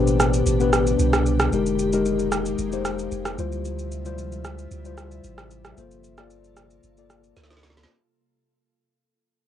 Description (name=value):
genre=amapiano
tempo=113 BPM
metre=4/4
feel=straight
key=unclear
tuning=A4 = 439 Hz
part: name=mellow tine electric piano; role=accompaniment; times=0.0-7.9 s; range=B2 to D5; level=-24 LUFS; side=left 6 dB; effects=medium stereo tremolo, cassette tape
part: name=glassy FM pad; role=sustained chords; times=0.0-7.9 s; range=B2 to E5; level=-30 LUFS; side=equal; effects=ensemble chorus, built-in reverb, cassette tape
part: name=punchy sub bass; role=bass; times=0.0-7.9 s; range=F1 to D2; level=-26 LUFS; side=right 2 dB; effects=none
part: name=electronic shaker, rim click and snare drum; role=drums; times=0.1-8.0 s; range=none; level=-25 LUFS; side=right 2 dB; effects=cassette tape
room=light reverb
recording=home recording on cassette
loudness=-20 LUFS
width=side -10 dB against mid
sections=0.0-7.9 A section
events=fade-out 0.0-7.9; drum fill 7.4-7.9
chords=0.0 Am11; 1.5 Fm11; 3.4 Dm11; 5.8 Gm11